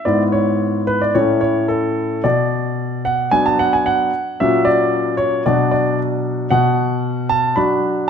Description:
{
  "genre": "classical-period piano sonatina",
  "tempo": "112 BPM",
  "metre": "4/4",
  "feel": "rubato",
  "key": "unclear",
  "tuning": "A4 = 444 Hz",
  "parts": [
    { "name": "warm concert grand piano", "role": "solo", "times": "0.0-8.1 s", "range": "G#2 to B5", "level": "-15 LUFS", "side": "equal", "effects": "none" }
  ],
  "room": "moderate recital hall reverb, RT60 1.6 s",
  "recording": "nothing above 10.3 kHz",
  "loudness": "-15 LUFS",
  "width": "side -7 dB against mid",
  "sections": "0.0-8.1 A section",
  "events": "none",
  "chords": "0.1 E/G#; 1.1 A; 2.2 Bm; 4.4 F#/A#; 5.5 Bm"
}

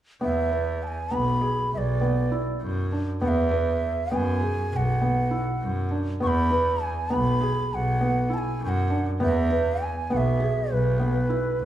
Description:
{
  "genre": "contemporary instrumental, chamber music in an uneven meter",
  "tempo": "200 BPM (eighths)",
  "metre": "5/8",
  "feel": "straight",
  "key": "unclear",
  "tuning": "A4 = 440 Hz",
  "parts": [
    { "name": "breathy bansuri", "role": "melody", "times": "0.2-11.7 s", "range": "B4 to C#6", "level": "-28 LUFS", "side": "right 2 dB", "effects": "none" },
    { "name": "felt-muted upright piano", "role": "arpeggios", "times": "0.2-11.7 s", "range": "B3 to B4", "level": "-27 LUFS", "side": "right 1 dB", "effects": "none" },
    { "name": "bright double bass", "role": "bass", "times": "0.2-11.7 s", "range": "B1 to F#2", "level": "-26 LUFS", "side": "equal", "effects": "none" }
  ],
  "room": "moderate recital hall reverb, RT60 1.6 s",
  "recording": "none",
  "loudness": "-22 LUFS",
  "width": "side -12 dB against mid",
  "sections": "0.2-11.7 A section",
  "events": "none",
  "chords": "0.2 E; 1.7 Bm; 3.2 E; 4.7 Bm; 6.2 E; 7.7 Bm; 9.2 E; 10.7 N.C."
}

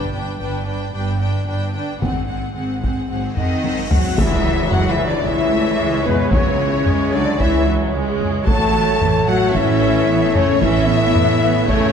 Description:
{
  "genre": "cinematic, epic orchestral film score",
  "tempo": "112 BPM",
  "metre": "4/4",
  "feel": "straight",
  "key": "C# phrygian from 4.2 s",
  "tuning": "A4 = 440 Hz",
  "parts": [
    { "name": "rich symphonic violin section", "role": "melody", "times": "0.0-11.9 s", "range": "B4 to A5", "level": "-27 LUFS", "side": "left 6 dB", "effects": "none" },
    { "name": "warm symphonic violin section", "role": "second line", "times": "0.0-11.9 s", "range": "G#4 to A5", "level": "-28 LUFS", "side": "left 2 dB", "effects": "none" },
    { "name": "clear studio viola section", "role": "accompaniment", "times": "0.0-11.9 s", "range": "E3 to D4", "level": "-24 LUFS", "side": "right 2 dB", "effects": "none" },
    { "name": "dark French horn section", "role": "sustained chords", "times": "0.0-11.9 s", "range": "F#3 to A4", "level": "-22 LUFS", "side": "left 6 dB", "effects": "none" },
    { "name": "rich symphonic cello section", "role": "bass", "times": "0.0-11.9 s", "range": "G2 to A3", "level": "-25 LUFS", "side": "right 2 dB", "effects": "none" },
    { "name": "rich symphonic double bass section", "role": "bass", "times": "0.0-11.9 s", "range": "G1 to C#2", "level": "-23 LUFS", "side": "right 4 dB", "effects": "none" },
    { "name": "taiko ensemble", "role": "drums", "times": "2.0-11.9 s", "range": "none", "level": "-22 LUFS", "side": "equal", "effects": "none" },
    { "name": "cymbal swell and impact", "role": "sound effects", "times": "3.6-6.3 s", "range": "none", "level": "-29 LUFS", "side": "equal", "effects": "none" },
    { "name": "silver concert flute", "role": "second line", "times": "3.4-11.9 s", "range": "B4 to A5", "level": "-26 LUFS", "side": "left 2 dB", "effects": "none" },
    { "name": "clear trombone section", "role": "sustained chords", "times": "4.2-11.9 s", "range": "E3 to A3", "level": "-28 LUFS", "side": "right 2 dB", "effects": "none" },
    { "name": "mellow trumpet", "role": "stabs", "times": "4.2-11.9 s", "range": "C#5", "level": "-26 LUFS", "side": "right 1 dB", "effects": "none" },
    { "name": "tam-tam", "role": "percussion", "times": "4.2-6.3 s", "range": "none", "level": "-29 LUFS", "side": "left 3 dB", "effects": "none" }
  ],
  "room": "wet concert hall reverb, RT60 2.5 s",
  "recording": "dark, warm production",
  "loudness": "-15 LUFS",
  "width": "side -7 dB against mid",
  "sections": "0.0-4.2 A section; 4.2-11.9 B section",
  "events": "drum fill 3.4-4.2; cymbal swell 3.6-4.2; band accent 4.2-4.7; impact 4.2-6.3",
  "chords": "0.0 G; 2.0 G#7; 4.2 C#m; 8.5 A"
}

